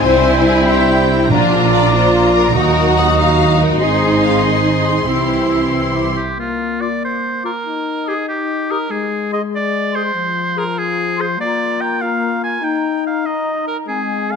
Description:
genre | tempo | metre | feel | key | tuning
cinematic | 96 BPM (dotted quarters) | 6/8 | straight | Bb mixolydian | A4 = 440 Hz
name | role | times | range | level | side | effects
warm symphonic violin section | melody | 0.0-6.1 s | G5 to C6 | -24 LUFS | left 3 dB | none
clear oboe | second line | 0.0-14.4 s | F4 to C6 | -22 LUFS | right 1 dB | none
mellow large flute ensemble | second line | 0.0-14.4 s | Ab5 to E6 | -25 LUFS | left 3 dB | none
warm clarinet | second line | 0.0-14.4 s | C4 to Ab4 | -26 LUFS | left 3 dB | none
warm symphonic violin section | second line | 0.0-6.1 s | F4 to Gb5 | -21 LUFS | left 7 dB | none
rich symphonic viola section | accompaniment | 0.0-6.1 s | C4 to Ab4 | -21 LUFS | equal | none
warm French horn section | sustained chords | 0.0-14.4 s | F3 to F4 | -22 LUFS | left 6 dB | none
warm trombone section | sustained chords | 0.0-6.1 s | G2 to Ab3 | -24 LUFS | right 3 dB | none
dark trumpet section | stabs | 0.0-6.1 s | C5 to Eb5 | -22 LUFS | right 2 dB | none
warm symphonic cello section | bass | 0.0-6.0 s | D4 to Gb4 | -19 LUFS | right 3 dB | none
warm symphonic double bass section | bass | 0.0-6.1 s | Ab1 to Eb2 | -18 LUFS | right 5 dB | none
timpani | percussion | 1.3-1.9 s | Bb2 | -23 LUFS | left 2 dB | none
room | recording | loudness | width
moderate scoring stage reverb, RT60 1.8 s | none | -13 LUFS | side -6 dB against mid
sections
0.0-6.4 A section; 6.4-14.4 B section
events
none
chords
0.1 C; 1.3 Bb; 2.5 Ebm; 3.8 Ab; 5.1 C; 6.4 Bb; 7.6 Eb; 8.9 Ab; 10.2 Fm; 11.4 Bb; 12.6 Eb

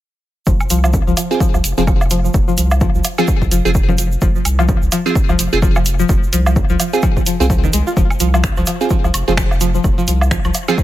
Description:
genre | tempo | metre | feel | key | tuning
minimal techno | 128 BPM | 4/4 | swing 58% on 16ths | F minor | A4 = 441 Hz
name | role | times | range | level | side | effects
string-like resonator pluck | riff | 0.5-10.8 s | Eb3 to F4 | -20 LUFS | left 2 dB | chorus, vintage 12-bit sampler grit, sidechain pumping, ping-pong delay
saturated sub bass | bass | 0.5-10.5 s | F1 to C2 | -17 LUFS | equal | sidechain pumping
electronic kick drum | drums | 0.5-10.8 s | none | -16 LUFS | equal | none
egg shaker | percussion | 0.5-10.8 s | none | -27 LUFS | right 3 dB | none
woodblock and congas | percussion | 0.6-10.8 s | none | -24 LUFS | right 1 dB | ping-pong delay
punchy analog drum machine | drums | 0.7-10.7 s | finger snaps, hi-hat | -21 LUFS | equal | none
wavetable chord stab | stabs | 1.3-10.8 s | C4 to Ab4 | -20 LUFS | right 3 dB | ping-pong delay
room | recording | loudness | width
digital ambience | none | -13 LUFS | side -14 dB against mid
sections
0.5-10.8 A section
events
none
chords
0.5 Fm

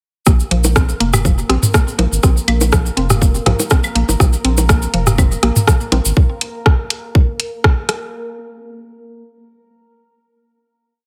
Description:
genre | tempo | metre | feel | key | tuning
minimal techno | 122 BPM | 4/4 | swing 54% on 16ths | unclear | A4 = 438 Hz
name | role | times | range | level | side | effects
mallet-like synth pluck | riff | 0.3-6.0 s | F3 to C4 | -24 LUFS | equal | chorus, sidechain pumping, delay
saturated sub bass | bass | 0.3-6.1 s | F1 to Bb1 | -19 LUFS | equal | tube saturation, sidechain pumping
electronic kick drum | drums | 0.3-7.7 s | none | -15 LUFS | equal | small room reverb
cabasa | percussion | 0.3-6.1 s | none | -25 LUFS | equal | none
organic electronic drum kit | percussion | 0.3-6.0 s | bongos, claves, rim click, toms | -20 LUFS | equal | small room reverb, tape echo
bubbling stepped-filter texture | texture | 0.3-8.1 s | Bb3 to Bb4 | -32 LUFS | equal | chorus, built-in reverb, sidechain pumping
garage drum kit | drums | 0.5-8.0 s | hi-hat, rim click | -20 LUFS | equal | small room reverb
room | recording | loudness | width
digital ambience | none | -15 LUFS | mono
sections
0.3-8.1 drop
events
drop 0.3-8.1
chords
0.3 Bb5

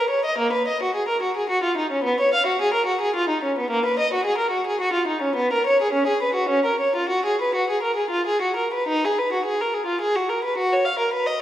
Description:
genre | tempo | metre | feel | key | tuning
classical, baroque-style suite movement for unaccompanied violin | 97-111 BPM | 3/4 | rubato | F# major | A4 = 440 Hz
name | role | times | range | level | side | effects
warm violin | solo | 0.0-11.4 s | A#3 to E#5 | -20 LUFS | equal | none
room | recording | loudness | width
wet recital hall reverb, RT60 1.7 s | heard from further back in the room | -20 LUFS | side -12 dB against mid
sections
0.0-8.9 A section; 8.9-11.4 A section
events
none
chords
none

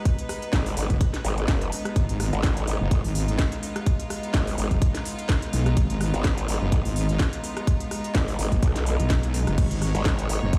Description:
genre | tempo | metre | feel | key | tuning
bass house | 126 BPM | 4/4 | swing 55% on 16ths | G# dorian | A4 = 440 Hz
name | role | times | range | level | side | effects
rich chamber string section | sustained chords | 0.0-10.6 s | G#3 to C#5 | -35 LUFS | equal | sidechain pumping
electronic kick drum | drums | 0.1-10.6 s | none | -25 LUFS | equal | none
garage drum kit | drums | 0.1-10.6 s | crash cymbal, hi-hat, rim click, snare drum | -34 LUFS | equal | none
growl bass | bass | 0.5-10.6 s | F#1 to B1 | -29 LUFS | equal | chorus, overdrive, sidechain pumping
wobble bass | bass | 0.9-10.5 s | F#1 to B1 | -26 LUFS | equal | chorus, overdrive, sidechain pumping
room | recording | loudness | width
little or no reverb | played on a big sound system in a bare room, large studio reverb | -24 LUFS | mono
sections
0.0-10.6 A section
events
none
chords
0.0 G#m

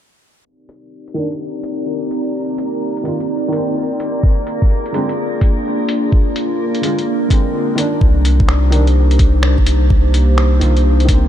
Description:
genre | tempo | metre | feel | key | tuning
future garage | 127 BPM | 4/4 | swing 64% on 16ths | C minor | A4 = 438 Hz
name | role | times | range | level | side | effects
warbly tape-like pad | sustained chords | 1.1-11.3 s | Bb3 to D5 | -19 LUFS | equal | chorus, built-in reverb, sidechain pumping
backwards swelling texture | texture | 1.9-8.0 s | Bb3 to Bb4 | -28 LUFS | right 2 dB | built-in reverb, wide subtle chorus
lo-fi sampler-style drum kit | drums | 0.7-11.2 s | finger snaps, hi-hat | -25 LUFS | left 1 dB | overdrive, studio reverb
felt-muted upright piano | accompaniment | 1.1-11.3 s | D3 to F4 | -23 LUFS | equal | sidechain pumping, low-pass filter, ping-pong delay
electronic kick drum | drums | 4.2-11.2 s | none | -13 LUFS | equal | overdrive, studio reverb
warm sub bass | bass | 8.0-11.3 s | Bb1 to C2 | -12 LUFS | equal | sidechain pumping
room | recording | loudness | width
light reverb | low-pass filter | -13 LUFS | side -11 dB against mid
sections
0.5-8.0 A section; 8.0-11.3 B section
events
filter sweep on felt piano 0.5-8.0; filter sweep 0.5-8.0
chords
0.5 Cm9; 4.2 Bb7; 8.0 Cm9

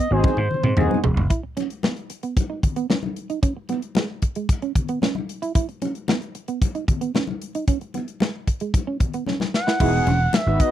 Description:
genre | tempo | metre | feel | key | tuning
early-eighties boogie funk | 113 BPM | 4/4 | straight | C# minor | A4 = 440 Hz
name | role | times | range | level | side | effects
expressive portamento lead | melody | 0.0-1.0, 9.5-10.7 s | B#4 to F#5 | -24 LUFS | right 2 dB | chorus, slapback echo
semi-hollow electric guitar | riff | 0.0-10.7 s | G#3 to E4 | -26 LUFS | right 7 dB | wide subtle chorus
mellow synth brass | accompaniment | 0.1-1.0, 9.8-10.7 s | B3 to B4 | -24 LUFS | left 2 dB | chorus
vintage slap bass | bass | 0.1-1.3, 9.8-10.6 s | E1 to G#2 | -21 LUFS | equal | none
modern studio drum kit | drums | 0.2-10.7 s | crash cymbal, hi-hat, kick drum, snare drum, toms | -21 LUFS | equal | none
congas | percussion | 0.2-10.5 s | none | -30 LUFS | left 6 dB | none
room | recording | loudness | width
little or no reverb | dry, close 1970s-style studio recording | -20 LUFS | side -12 dB against mid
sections
0.0-1.3 A section; 1.3-9.8 B section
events
drum fill 0.2-1.3, 9.3-9.8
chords
0.0 G#7; 1.3 N.C.; 3.4 C#m7; 5.6 N.C.; 7.7 C#m7; 9.8 Emaj7

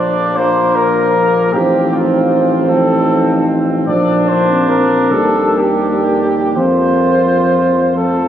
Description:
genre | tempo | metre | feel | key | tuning
classical, hymn-like piece for brass band | 39-53 BPM (dotted quarters) | 6/8 | rubato | unclear | A4 = 442 Hz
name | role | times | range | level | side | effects
mellow cornet | melody | 0.0-8.3 s | F4 to D5 | -16 LUFS | left 2 dB | none
warm flugelhorn | second line | 0.0-8.3 s | Bb3 to F4 | -18 LUFS | right 4 dB | none
clear trombone | accompaniment | 0.0-8.3 s | F3 to G3 | -19 LUFS | right 2 dB | none
mellow euphonium | accompaniment | 0.0-8.3 s | A3 to Eb4 | -20 LUFS | equal | none
mellow tuba | bass | 0.0-8.3 s | A1 to F2 | -17 LUFS | equal | none
room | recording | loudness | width
wet cathedral reverb, RT60 5.2 s | recorded on a phone in the room, club reverb | -11 LUFS | side -10 dB against mid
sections
0.0-8.3 A section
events
none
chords
0.0 Bb; 1.5 F7/A; 3.9 Bb; 5.1 Eb; 6.6 Fsus4

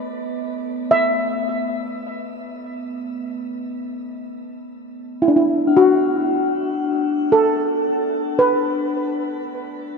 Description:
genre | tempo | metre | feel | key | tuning
world meditative, free-time meditation music | free time | none | none | B minor pentatonic | A4 = 442 Hz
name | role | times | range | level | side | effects
steel pan | melody | 0.0-10.0 s | D4 to E5 | -18 LUFS | equal | shimmer reverb, tape echo
bronze singing bowl | texture | 0.0-10.0 s | A3 to D4 | -24 LUFS | left 3 dB | shimmer reverb
room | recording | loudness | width
wet huge ambient reverb, RT60 4.0 s | none | -17 LUFS | side -4 dB against mid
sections
0.0-10.0 A section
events
none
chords
none

